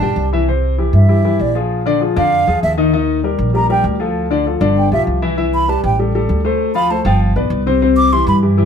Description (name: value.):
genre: jazz.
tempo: 196 BPM.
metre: 4/4.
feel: straight.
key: C major.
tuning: A4 = 442 Hz.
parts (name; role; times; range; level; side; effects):
mellow hollow silver concert flute; melody; 0.0-8.4 s; D5 to D6; -18 LUFS; right 3 dB; plate reverb.
warm concert grand piano; accompaniment; 0.0-8.7 s; C3 to G5; -16 LUFS; left 4 dB; none.
upright bass; bass; 0.0-8.7 s; G1 to G2; -16 LUFS; equal; none.
room: light reverb.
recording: none.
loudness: -13 LUFS.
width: side -7 dB against mid.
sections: 0.5-8.7 A section.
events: flute solo 0.5-8.7.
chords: 0.5 C; 1.7 Bb7; 2.9 Ebadd9; 4.2 Dm; 4.8 G6; 5.4 Cmaj7; 6.0 Am7; 6.6 Dm7; 7.2 G7; 7.8 C.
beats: 0.17 | 0.48 0.78 1.09 1.40 | 1.70 2.01 2.31 2.62 | 2.93 3.23 3.54 3.85 | 4.15 4.46 4.76 5.07 | 5.38 5.68 5.99 6.29 | 6.60 6.90 7.21 7.51 | 7.82 8.12 8.43.